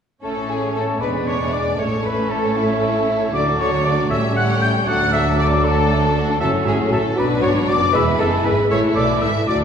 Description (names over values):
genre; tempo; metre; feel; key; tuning
quick classical-period movement for symphony orchestra; 78 BPM (dotted quarters); 6/8; straight; A major; A4 = 440 Hz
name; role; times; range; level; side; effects
warm studio violin section; melody; 0.2-9.6 s; E4 to G5; -28 LUFS; left 3 dB; none
clear clarinet; second line; 0.2-9.6 s; E4 to G5; -26 LUFS; equal; none
clear oboe; second line; 0.2-9.6 s; C#5 to E5; -28 LUFS; equal; none
concert flute; second line; 0.2-9.5 s; E5 to G6; -23 LUFS; left 2 dB; none
rich chamber violin section; second line; 0.2-9.6 s; G#3 to A4; -28 LUFS; left 2 dB; none
mellow bassoon; accompaniment; 0.2-9.6 s; F#3 to A3; -26 LUFS; right 2 dB; none
warm chamber viola section; accompaniment; 0.2-9.6 s; E3 to D4; -26 LUFS; equal; none
mellow French horn section; sustained chords; 0.2-9.6 s; F#3 to F#4; -25 LUFS; left 3 dB; none
rich chamber double bass section; bass; 0.2-9.6 s; E1 to D2; -25 LUFS; right 2 dB; none
warm chamber cello section; bass; 0.2-9.6 s; D2 to D3; -26 LUFS; right 2 dB; none
room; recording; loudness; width
wet recital hall reverb, RT60 1.8 s; recorded in a church or concert hall; -16 LUFS; side -7 dB against mid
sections
0.2-9.6 A section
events
none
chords
0.2 A; 1.0 E7; 1.8 A; 3.3 D; 4.1 A7; 4.9 D; 6.4 F#m7; 7.2 Bm; 7.9 E; 8.7 A5